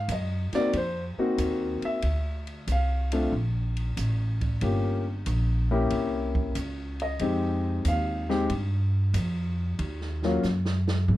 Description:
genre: jazz piano trio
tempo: 93 BPM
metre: 4/4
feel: swing 68% on 8ths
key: F minor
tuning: A4 = 440 Hz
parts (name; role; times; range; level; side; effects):
- warm grand piano; melody; 0.0-10.4 s; Gb3 to F5; -27 LUFS; left 2 dB; none
- upright bass; bass; 0.0-11.2 s; G1 to Ab2; -27 LUFS; equal; none
- open jazz drum kit; drums; 0.1-11.2 s; hi-hat, kick drum, ride cymbal, snare drum, toms; -37 LUFS; right 1 dB; none
room: light reverb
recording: dark, warm production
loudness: -25 LUFS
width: side -15 dB against mid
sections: 0.0-11.2 A section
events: grand piano solo 0.0-11.2; drum fill 10.4-11.2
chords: 0.0 Ab9 (rootless); 2.0 Bbmaj7; 4.6 Gm7b5; 5.9 C7b9; 7.2 Fm7; 9.8 Ebm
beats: 0.09 0.74 1.38 | 2.03 2.68 3.32 3.97 | 4.62 5.26 5.91 6.56 | 7.20 7.85 8.50 9.14 | 9.79 10.44 11.08

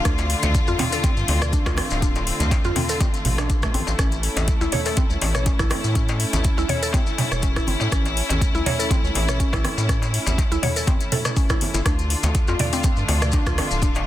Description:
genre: afro house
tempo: 122 BPM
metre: 4/4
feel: swing 54% on 16ths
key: unclear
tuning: A4 = 439 Hz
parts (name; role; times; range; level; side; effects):
- rich symphonic string section; sustained chords; 0.0-14.1 s; D3 to F4; -27 LUFS; left 1 dB; sidechain pumping
- mallet-like synth pluck; arpeggios; 0.1-13.9 s; A3 to D5; -29 LUFS; equal; chorus, sidechain pumping, dub echo
- round analog bass; bass; 0.1-14.1 s; D1 to A2; -24 LUFS; equal; sidechain pumping
- afro-pop drum kit; drums; 0.1-14.0 s; hi-hat, rim click, toms; -26 LUFS; equal; soft clipping on snare, small room ambience
- electronic kick drum; drums; 0.1-13.9 s; none; -21 LUFS; equal; small room ambience
- maracas; percussion; 0.1-14.0 s; none; -33 LUFS; left 5 dB; none
- darbuka; percussion; 0.2-14.0 s; none; -32 LUFS; left 2 dB; none
- congas; percussion; 0.4-13.7 s; none; -32 LUFS; right 2 dB; none
room: light reverb, small room ambience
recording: dense, heavily limited modern master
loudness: -19 LUFS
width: side -13 dB against mid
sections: 0.0-14.1 A section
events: none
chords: 0.0 Dm7; 4.0 A; 11.9 Dm7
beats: | 0.06 0.55 1.04 1.53 | 2.02 2.51 3.00 3.50 | 3.99 4.48 4.97 5.46 | 5.96 6.45 6.94 7.43 | 7.92 8.41 8.91 9.40 | 9.89 10.38 10.87 11.37 | 11.86 12.35 12.84 13.33 | 13.82

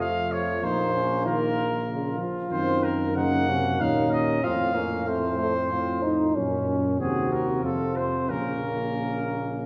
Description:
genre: classical, brass quintet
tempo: 94 BPM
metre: 3/4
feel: straight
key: Bb minor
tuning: A4 = 441 Hz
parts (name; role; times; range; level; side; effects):
- warm trumpet; melody; 0.0-9.7 s; Ab4 to Gb5; -32 LUFS; equal; none
- mellow flugelhorn; second line; 0.0-9.7 s; C4 to Gb4; -34 LUFS; equal; none
- mellow trombone; accompaniment; 0.0-9.7 s; A2 to F3; -34 LUFS; equal; none
- warm French horn; accompaniment; 0.0-9.7 s; A3 to Eb4; -32 LUFS; equal; none
- mellow tuba; bass; 0.0-9.7 s; Bb1 to Gb2; -33 LUFS; equal; none
room: wet scoring stage reverb, RT60 2.1 s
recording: none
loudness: -26 LUFS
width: mono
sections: 0.0-9.7 A section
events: none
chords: 0.0 F; 0.6 Bbm; 2.5 Ebm/Gb; 4.4 F; 6.4 Gb; 7.0 Cm7b5/Eb; 7.6 F; 8.3 Bbm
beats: 0.01 | 0.64 1.26 1.89 | 2.51 3.16 3.80 | 4.44 5.07 5.71 | 6.35 7.00 7.64 | 8.29 8.96 9.62

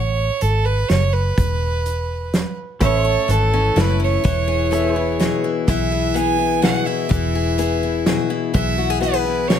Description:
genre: honky-tonk and classic country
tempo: 125 BPM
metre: 3/4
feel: straight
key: unclear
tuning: A4 = 439 Hz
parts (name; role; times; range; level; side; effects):
- bright fiddle; second line; 0.0-9.6 s; A4 to G#5; -22 LUFS; right 7 dB; none
- vintage muted fingered electric bass; bass; 0.0-9.6 s; E1 to B1; -21 LUFS; equal; none
- unplugged drum kit; drums; 0.4-9.6 s; hi-hat, kick drum, snare drum; -21 LUFS; right 1 dB; none
- picked steel-string acoustic guitar; accompaniment; 2.8-9.6 s; A2 to A4; -20 LUFS; left 8 dB; none
- pedal steel guitar; sustained chords; 2.8-9.6 s; G#4 to E5; -28 LUFS; right 1 dB; none
room: little or no reverb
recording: none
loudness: -16 LUFS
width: side -9 dB against mid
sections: 0.0-9.6 A section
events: fiddle solo 0.0-9.6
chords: 0.0 A; 1.4 E5; 2.8 A; 4.2 E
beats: 0.41 0.89 | 1.37 1.85 2.33 | 2.81 3.29 3.76 | 4.24 4.72 5.20 | 5.68 6.16 6.63 | 7.11 7.59 8.07 | 8.54 9.02 9.50

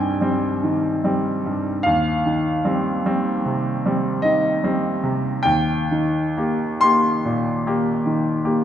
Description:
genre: classical, romantic nocturne for solo piano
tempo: 42-52 BPM (dotted quarters)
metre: 9/8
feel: rubato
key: C minor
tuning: A4 = 442 Hz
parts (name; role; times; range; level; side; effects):
- bright concert grand piano; solo; 0.0-8.6 s; C2 to C6; -18 LUFS; equal; none
room: moderate concert hall reverb, RT60 2.3 s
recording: minimal, uncompressed stereo recording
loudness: -18 LUFS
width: side -10 dB against mid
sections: 0.0-8.6 A section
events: none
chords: 0.0 Cm; 1.9 Cm/Eb; 5.5 Eb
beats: 0.63 | 1.86 3.05 4.24 | 5.46 6.83 8.05

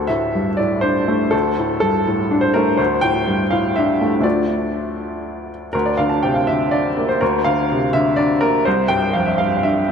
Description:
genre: neoclassical minimalist piano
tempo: 123 BPM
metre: 3/4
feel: rubato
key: D minor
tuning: A4 = 439 Hz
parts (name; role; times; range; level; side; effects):
- clear upright piano; solo; 0.0-9.9 s; C2 to A5; -16 LUFS; equal; tape echo
room: wet plate reverb, RT60 3.3 s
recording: dreamy mix soaked in reverb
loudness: -15 LUFS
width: side -6 dB against mid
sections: 0.0-9.9 A section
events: none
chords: 0.0 Dm7; 8.7 Cadd9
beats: 0.35 0.84 | 1.33 1.82 2.31 | 2.79 3.27 3.75 | 4.24 4.74 5.24 | 5.74 6.23 6.72 | 7.21 7.70 8.18 | 8.65 9.14 9.63

